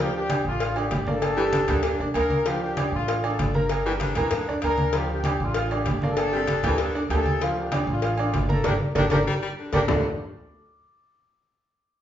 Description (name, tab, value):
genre	latin, salsa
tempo	194 BPM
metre	4/4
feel	straight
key	D minor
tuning	A4 = 440 Hz
part	brilliant trombone section	melody	0.0-10.0 s	A3 to Bb4	-28 LUFS	left 1 dB	none
part	bright upright piano	accompaniment	0.0-10.0 s	D3 to F6	-27 LUFS	right 2 dB	none
part	upright bass	bass	0.0-10.0 s	G1 to D2	-30 LUFS	equal	none
part	congas	percussion	0.1-10.0 s	none	-29 LUFS	equal	none
part	agogo bells and timbales	percussion	0.3-10.0 s	none	-33 LUFS	right 4 dB	none
part	cowbell and bongos	percussion	0.3-10.0 s	none	-32 LUFS	left 5 dB	none
part	clear baritone saxophone	second line	1.4-10.0 s	C3 to G3	-32 LUFS	left 2 dB	none
room	wet large studio reverb, RT60 0.9 s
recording	band playing live in one room, nothing above 7.6 kHz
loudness	-22 LUFS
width	side -10 dB against mid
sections	0.0-9.9 A section; 9.9-11.1 B section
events	band accent 8.6-9.9; drum fill 9.0-9.9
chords	0.0 Gmadd9; 2.5 Dm; 3.7 Gm; 4.9 Dm; 6.2 Gmadd9; 7.4 Dm; 8.6 Gmadd9; 9.9 D5